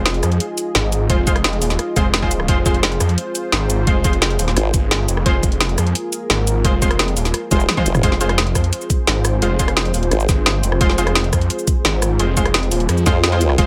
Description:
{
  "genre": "dark technical drum and bass",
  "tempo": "173 BPM",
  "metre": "4/4",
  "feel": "straight",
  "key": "F minor",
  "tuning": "A4 = 440 Hz",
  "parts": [
    { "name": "dark analog pad", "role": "sustained chords", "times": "0.0-13.7 s", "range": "F4 to Eb5", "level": "-27 LUFS", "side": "equal", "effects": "chorus, sidechain pumping" },
    { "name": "orchestra-hit-like synth stab", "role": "stabs", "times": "0.0-13.7 s", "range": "Ab3 to C5", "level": "-26 LUFS", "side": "equal", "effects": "built-in reverb, digital delay" },
    { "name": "snarling distorted saw bass", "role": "bass", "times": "0.0-13.7 s", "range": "Eb1 to F2", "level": "-21 LUFS", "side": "equal", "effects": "distortion, overdrive, sidechain pumping" },
    { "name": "drum and bass drum kit", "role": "drums", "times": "0.1-13.7 s", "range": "cabasa, hi-hat, rim click, snare drum, toms", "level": "-22 LUFS", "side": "equal", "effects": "overdrive" },
    { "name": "electronic kick drum", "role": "drums", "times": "1.1-13.7 s", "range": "none", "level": "-20 LUFS", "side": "equal", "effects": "overdrive" },
    { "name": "formant-sweep wobble bass", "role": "bass", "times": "4.6-4.7, 7.5-8.0, 10.1-10.3, 13.1-13.6 s", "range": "F1 to F2", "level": "-19 LUFS", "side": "equal", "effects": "chorus" }
  ],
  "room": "little or no reverb",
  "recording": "none",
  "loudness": "-17 LUFS",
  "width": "mono",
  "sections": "0.0-8.0 A section; 8.0-13.7 A section",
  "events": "drop 0.0-8.0, 8.0-13.7; drum fill 7.7-8.0",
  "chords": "0.0 Fm"
}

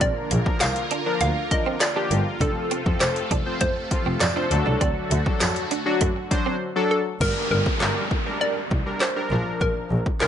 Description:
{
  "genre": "dance-pop",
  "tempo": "100 BPM",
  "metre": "4/4",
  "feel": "straight",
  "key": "G minor",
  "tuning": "A4 = 440 Hz",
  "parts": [
    { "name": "hollow square pluck", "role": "melody", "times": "0.0-10.3 s", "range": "A4 to F5", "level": "-27 LUFS", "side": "equal", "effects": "chorus, digital delay" },
    { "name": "warm analog keys", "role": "accompaniment", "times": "0.0-10.3 s", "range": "F3 to C5", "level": "-27 LUFS", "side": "left 2 dB", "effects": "chorus, sidechain pumping" },
    { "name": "filtered supersaw swell", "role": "sustained chords", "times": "0.0-7.2 s", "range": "C3 to Bb4", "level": "-31 LUFS", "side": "equal", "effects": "phaser, sidechain pumping" },
    { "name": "direct-recorded clean electric guitar", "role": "riff", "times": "0.0-6.6 s", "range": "A3 to D4", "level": "-31 LUFS", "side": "right 8 dB", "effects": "ensemble chorus" },
    { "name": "warm double bass", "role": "bass", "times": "0.0-10.3 s", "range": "F1 to F#2", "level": "-26 LUFS", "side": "equal", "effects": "sidechain pumping" },
    { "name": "deep house drum kit", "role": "drums", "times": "0.0-10.3 s", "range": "crash cymbal, handclaps, hi-hat, kick drum, snare drum", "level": "-25 LUFS", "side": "equal", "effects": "none" },
    { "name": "tambourine", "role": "percussion", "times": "0.6-5.5 s", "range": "none", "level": "-33 LUFS", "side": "right 10 dB", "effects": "none" },
    { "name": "downlifter", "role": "sound effects", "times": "7.2-10.3 s", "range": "none", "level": "-30 LUFS", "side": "equal", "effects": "none" }
  ],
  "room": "light reverb, digital ambience",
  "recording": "nothing above 10.6 kHz",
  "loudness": "-20 LUFS",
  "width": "side -9 dB against mid",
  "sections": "0.0-7.2 A section; 7.2-10.3 B section",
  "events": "silent gap 6.6-7.2",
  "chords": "0.0 Bb; 2.4 F; 4.5 D; 7.2 Gm; 9.3 Bb"
}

